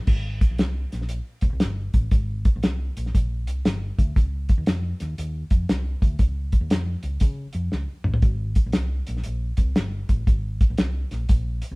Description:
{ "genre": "uptempo 1960s-style soul", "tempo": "118 BPM", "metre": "4/4", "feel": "swing 65% on 8ths", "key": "Ab major", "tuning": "A4 = 441 Hz", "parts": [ { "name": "hollow-body short-scale fingered electric bass", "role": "bass", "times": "0.1-11.8 s", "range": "G1 to Db3", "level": "-27 LUFS", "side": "equal", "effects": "none" }, { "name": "cloth-damped thuddy drum kit", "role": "drums", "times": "0.1-11.7 s", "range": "crash cymbal, hi-hat, kick drum, snare drum, toms", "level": "-20 LUFS", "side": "equal", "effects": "none" } ], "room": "light reverb", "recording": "band playing live in one room", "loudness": "-21 LUFS", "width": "side -28 dB against mid", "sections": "0.1-11.8 A section", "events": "drum fill 7.7-8.2", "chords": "none", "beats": "| 0.09 0.59 1.10 1.61 | 2.12 2.63 3.14 3.65 | 4.16 4.67 5.17 5.68 | 6.19 6.70 7.21 7.72 | 8.23 8.74 9.25 9.76 | 10.27 10.78 11.29" }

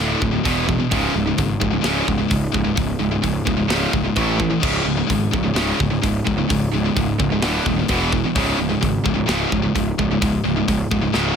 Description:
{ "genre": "heavy metal", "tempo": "129 BPM", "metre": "4/4", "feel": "straight", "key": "C# minor", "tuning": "A4 = 441 Hz", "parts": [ { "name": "distorted electric guitar", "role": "riff", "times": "0.0-11.4 s", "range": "C#2 to A3", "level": "-22 LUFS", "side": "right 11 dB", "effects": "overdrive" }, { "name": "high-gain distorted guitar", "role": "riff", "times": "0.0-11.4 s", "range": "C#2 to A3", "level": "-22 LUFS", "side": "left 11 dB", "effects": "distortion" }, { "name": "fuzz picked electric bass", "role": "bass", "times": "0.0-11.3 s", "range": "C#1 to A1", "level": "-23 LUFS", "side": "equal", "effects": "overdrive" }, { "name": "tight metal drum kit", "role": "drums", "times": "0.2-11.2 s", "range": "crash cymbal, hi-hat, kick drum, snare drum", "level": "-24 LUFS", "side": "equal", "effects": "none" } ], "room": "light reverb", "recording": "none", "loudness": "-17 LUFS", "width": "side -7 dB against mid", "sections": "0.0-11.4 A section", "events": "drum fill 11.1", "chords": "0.4 E5; 0.9 C#5; 4.2 A5; 4.6 C#5; 7.4 D5; 7.9 E5; 8.4 C#5", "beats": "0.44 | 0.91 1.38 1.84 2.31 | 2.77 3.24 3.71 4.17 | 4.64 5.10 5.57 6.03 | 6.50 6.96 7.43 7.89 | 8.36 8.82 9.29 9.75 | 10.22 10.68 11.15" }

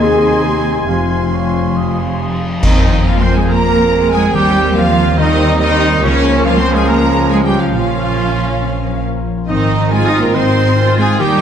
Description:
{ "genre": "cinematic, heroic adventure film score", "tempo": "140 BPM", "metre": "4/4", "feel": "straight", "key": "F minor", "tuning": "A4 = 439 Hz", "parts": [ { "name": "rich symphonic violin section", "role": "melody", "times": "0.0-11.4 s", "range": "Db5 to Eb6", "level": "-26 LUFS", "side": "left 3 dB", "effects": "none" }, { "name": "hollow small flute group", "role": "second line", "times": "0.0-2.4 s", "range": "C6", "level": "-26 LUFS", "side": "left 1 dB", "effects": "none" }, { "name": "mellow cor anglais", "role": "second line", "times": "0.0-2.6 s", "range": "Db5 to Ab5", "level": "-26 LUFS", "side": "right 2 dB", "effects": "none" }, { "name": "rich studio violin section", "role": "second line", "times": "0.0-11.4 s", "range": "Db5 to Eb6", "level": "-25 LUFS", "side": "left 2 dB", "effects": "none" }, { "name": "warm clarinet", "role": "second line", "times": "0.0-2.4 s", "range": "Eb5 to F5", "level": "-26 LUFS", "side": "equal", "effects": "none" }, { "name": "clear symphonic viola section", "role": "accompaniment", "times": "0.0-11.4 s", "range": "C3 to F4", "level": "-22 LUFS", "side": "right 1 dB", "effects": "none" }, { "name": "clear trombone section", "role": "sustained chords", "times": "0.0-11.4 s", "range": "C3 to F4", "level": "-21 LUFS", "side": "right 1 dB", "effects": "none" }, { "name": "dark French horn section", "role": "sustained chords", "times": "0.0-2.2 s", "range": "F4 to Ab4", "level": "-18 LUFS", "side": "left 3 dB", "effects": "none" }, { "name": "concert harp", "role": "arpeggios", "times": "0.0-11.4 s", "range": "Ab2 to C6", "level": "-22 LUFS", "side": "left 11 dB", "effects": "none" }, { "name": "dark trumpet section", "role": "stabs", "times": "0.0-11.4 s", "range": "Db4 to Ab5", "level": "-18 LUFS", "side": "right 2 dB", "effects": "none" }, { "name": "rich symphonic cello section", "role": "bass", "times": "0.0-11.4 s", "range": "Eb2 to Eb4", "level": "-19 LUFS", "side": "right 2 dB", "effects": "none" }, { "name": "rich symphonic double bass section", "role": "bass", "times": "0.0-11.4 s", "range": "F1 to F2", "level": "-18 LUFS", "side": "right 2 dB", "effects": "none" }, { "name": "clash cymbals and concert bass drum", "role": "percussion", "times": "2.6-3.4 s", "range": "none", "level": "-18 LUFS", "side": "equal", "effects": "none" } ], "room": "moderate scoring stage reverb, RT60 1.7 s", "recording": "dark, warm production", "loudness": "-11 LUFS", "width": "side -8 dB against mid", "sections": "0.0-2.6 A section; 2.6-11.4 B section", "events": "band accent 2.6-3.1", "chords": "0.0 Ab/Eb; 0.9 Fm; 4.3 Cm7/Eb; 6.0 Db; 7.7 Bbm; 9.5 Ab", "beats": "0.01 0.44 | 0.88 1.31 1.75 2.19 | 2.63 3.06 3.49 3.91 | 4.33 4.76 5.18 5.61 | 6.03 6.45 6.88 7.30 | 7.74 8.18 8.62 9.05 | 9.48 9.91 10.34 10.77 | 11.19" }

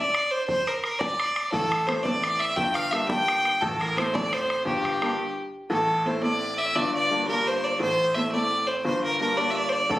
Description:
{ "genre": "celtic folk, Celtic jig", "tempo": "115 BPM (dotted quarters)", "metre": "6/8", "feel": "straight", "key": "G dorian", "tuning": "A4 = 440 Hz", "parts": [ { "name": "clear fiddle", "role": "melody", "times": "0.0-10.0 s", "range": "G4 to G5", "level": "-24 LUFS", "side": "equal", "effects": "plate reverb" }, { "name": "bodhran", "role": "percussion", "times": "0.1-5.1, 9.9-10.0 s", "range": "none", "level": "-31 LUFS", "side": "equal", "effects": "none" }, { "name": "clear upright piano", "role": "accompaniment", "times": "1.5-10.0 s", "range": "G1 to E4", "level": "-28 LUFS", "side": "equal", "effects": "none" } ], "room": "moderate studio ambience, RT60 0.4 s", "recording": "recorded on a phone in the room, studio reverb", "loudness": "-22 LUFS", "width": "side -16 dB against mid", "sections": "0.0-5.7 A section; 5.7-10.0 A section", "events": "stop 5.2-5.7", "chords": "0.0 N.C.; 1.5 Am; 2.6 Gm; 3.6 Am; 4.7 Gm; 5.7 Am; 6.8 Gm; 7.8 Am; 8.8 Gm", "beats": "| 0.48 1.00 | 1.52 2.05 | 2.57 3.09 | 3.61 4.14 | 4.66 5.18 | 5.71 6.23 | 6.75 7.28 | 7.80 8.32 | 8.85 9.37 | 9.90" }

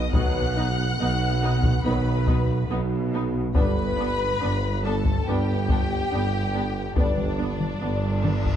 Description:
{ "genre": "cinematic, epic orchestral film score", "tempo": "70 BPM", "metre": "4/4", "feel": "straight", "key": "unclear", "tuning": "A4 = 440 Hz", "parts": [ { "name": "dark symphonic violin section", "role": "melody", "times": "0.0-8.6 s", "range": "D5 to F#6", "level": "-34 LUFS", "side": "left 4 dB", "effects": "none" }, { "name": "rich symphonic violin section", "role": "second line", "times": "0.0-8.6 s", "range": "D4 to F#5", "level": "-30 LUFS", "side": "left 2 dB", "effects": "none" }, { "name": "rich symphonic cello section", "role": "bass", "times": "0.0-8.6 s", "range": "G2 to B2", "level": "-28 LUFS", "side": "right 2 dB", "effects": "none" }, { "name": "warm symphonic double bass section", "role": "bass", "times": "0.0-8.6 s", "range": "G1 to B1", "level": "-28 LUFS", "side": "right 2 dB", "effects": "none" }, { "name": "warm tuba", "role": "bass", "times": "0.0-8.6 s", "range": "G1 to B1", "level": "-30 LUFS", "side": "right 1 dB", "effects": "none" }, { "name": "rich studio viola section", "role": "accompaniment", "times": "0.1-8.3 s", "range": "B3 to D#4", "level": "-33 LUFS", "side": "right 1 dB", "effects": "none" }, { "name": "mellow French horn section", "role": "sustained chords", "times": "0.1-7.3 s", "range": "B3 to B4", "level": "-35 LUFS", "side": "left 4 dB", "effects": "none" }, { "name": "taiko ensemble", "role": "drums", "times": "0.1-8.6 s", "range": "none", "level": "-25 LUFS", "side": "left 2 dB", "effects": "none" }, { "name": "bright trombone section", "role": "sustained chords", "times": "0.2-7.3 s", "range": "D3 to G3", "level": "-35 LUFS", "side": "right 2 dB", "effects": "none" }, { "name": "cymbal swell", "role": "sound effects", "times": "8.0-8.6 s", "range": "none", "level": "-40 LUFS", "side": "left 1 dB", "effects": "none" } ], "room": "moderate scoring stage reverb, RT60 1.6 s", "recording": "dark, warm production, nothing above 10.3 kHz", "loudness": "-21 LUFS", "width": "side -10 dB against mid", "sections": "0.0-8.6 A section", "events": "cymbal swell 8.0-8.6", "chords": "0.0 B; 3.6 G", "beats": "| 0.14 0.99 1.84 2.70 | 3.55 4.41 5.26 6.11 | 6.96 7.82" }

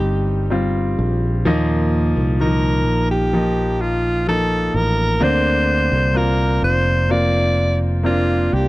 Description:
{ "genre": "pop ballad", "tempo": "64 BPM", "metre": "4/4", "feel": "straight", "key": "Bb major", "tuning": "A4 = 440 Hz", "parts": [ { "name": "raspy alto saxophone", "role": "melody", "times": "0.0-8.7 s", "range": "F4 to D5", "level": "-20 LUFS", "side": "equal", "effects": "none" }, { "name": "clear grand piano", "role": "accompaniment", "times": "0.0-8.7 s", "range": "Bb2 to F4", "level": "-20 LUFS", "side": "equal", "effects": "none" }, { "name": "fingered electric bass", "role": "bass", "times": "0.0-8.7 s", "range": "F1 to Eb2", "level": "-19 LUFS", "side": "equal", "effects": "none" } ], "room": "little or no reverb", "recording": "dry, close 1970s-style studio recording", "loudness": "-15 LUFS", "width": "side -18 dB against mid", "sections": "0.0-8.7 A section", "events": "none", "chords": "0.0 Cm; 1.5 Ebsus2; 5.2 Bbadd9", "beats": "0.52 | 1.46 2.40 3.34 4.28 | 5.21 6.16 7.10 8.05" }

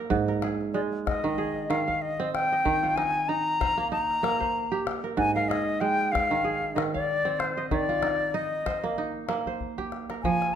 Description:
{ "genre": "west african traditional, West African string and xylophone music", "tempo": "95 BPM", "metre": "4/4", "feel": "swing 56% on 16ths", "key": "unclear", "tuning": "A4 = 439 Hz", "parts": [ { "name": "kora", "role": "arpeggios", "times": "0.0-10.6 s", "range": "Ab2 to F5", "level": "-28 LUFS", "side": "right 5 dB", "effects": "none" }, { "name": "calabash", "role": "percussion", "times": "0.1-10.5 s", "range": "none", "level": "-35 LUFS", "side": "left 5 dB", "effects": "none" }, { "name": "silver concert flute", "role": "melody", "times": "0.7-10.6 s", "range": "C5 to Bb5", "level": "-26 LUFS", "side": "left 3 dB", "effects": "none" } ], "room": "moderate recital hall reverb, RT60 1.5 s", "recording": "minimal, uncompressed stereo recording", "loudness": "-24 LUFS", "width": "side -8 dB against mid", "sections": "0.0-10.2 A section", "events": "drum fill 9.4-10.2", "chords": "0.1 Ab; 2.6 Eb; 5.2 Ab; 7.7 Eb", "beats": "| 0.11 0.74 1.38 2.01 | 2.65 3.28 3.91 4.55 | 5.18 5.81 6.44 7.08 | 7.71 8.34 8.97 9.60 | 10.23" }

